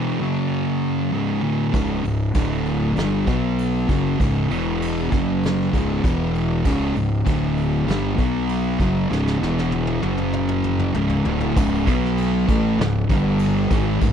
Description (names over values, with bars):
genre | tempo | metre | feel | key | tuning
stoner and doom metal | 98 BPM | 4/4 | straight | C# minor | A4 = 440 Hz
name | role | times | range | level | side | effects
thick fuzz guitar | riff | 0.0-14.1 s | C#2 to B3 | -23 LUFS | left 8 dB | distortion
thick fuzz guitar | riff | 0.0-14.1 s | C#2 to B3 | -23 LUFS | right 9 dB | distortion
fuzz fingered electric bass | bass | 1.7-14.1 s | C#1 to B1 | -26 LUFS | equal | overdrive
soft brush drum kit | drums | 1.7-14.1 s | crash cymbal, kick drum, ride cymbal, snare drum, toms | -24 LUFS | equal | none
room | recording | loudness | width
small room reverb | none | -18 LUFS | side -8 dB against mid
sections
0.0-11.6 A section; 11.6-14.1 B section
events
drum fill 9.1-11.6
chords
0.2 F#5; 1.1 C#5; 2.4 D5; 3.0 G5; 3.3 B5; 3.9 C#5; 4.5 E5; 5.1 F#5; 5.7 C#5; 6.0 E5; 6.7 C#5; 7.3 D5; 7.9 G5; 8.2 B5; 8.8 C#5; 9.4 E5; 10.0 F#5; 11.0 C#5; 11.9 B5; 12.5 C#m; 13.1 G5